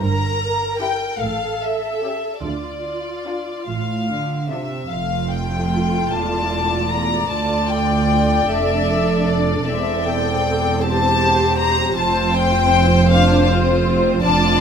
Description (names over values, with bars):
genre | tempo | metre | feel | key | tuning
classical, slow romantic movement for string orchestra | 48-54 BPM (dotted quarters) | 6/8 | rubato | D minor, F major from 4.9 s | A4 = 441 Hz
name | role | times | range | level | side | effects
warm symphonic violin section | melody | 0.0-14.6 s | D5 to Bb5 | -21 LUFS | left 4 dB | none
dark symphonic viola section | accompaniment | 0.0-14.6 s | A3 to Bb4 | -23 LUFS | right 1 dB | none
rich symphonic cello section | bass | 0.0-14.6 s | D2 to D3 | -23 LUFS | right 4 dB | none
warm symphonic double bass section | bass | 0.0-14.6 s | E1 to D2 | -22 LUFS | right 3 dB | none
warm symphonic violin section | second line | 0.8-14.6 s | C#4 to D5 | -24 LUFS | left 2 dB | none
room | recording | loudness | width
moderate recital hall reverb, RT60 1.4 s | minimal, uncompressed stereo recording | -16 LUFS | side -7 dB against mid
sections
0.0-4.9 A section; 4.9-14.6 B section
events
none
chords
0.0 Edim/G; 1.2 A7; 2.4 Dm; 4.9 F; 7.3 Dm; 9.7 C/E; 12.0 F5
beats
| 0.02 1.21 | 2.44 3.69 | 4.92 6.12 | 7.32 8.51 | 9.68 10.83 | 11.98 13.11 | 14.24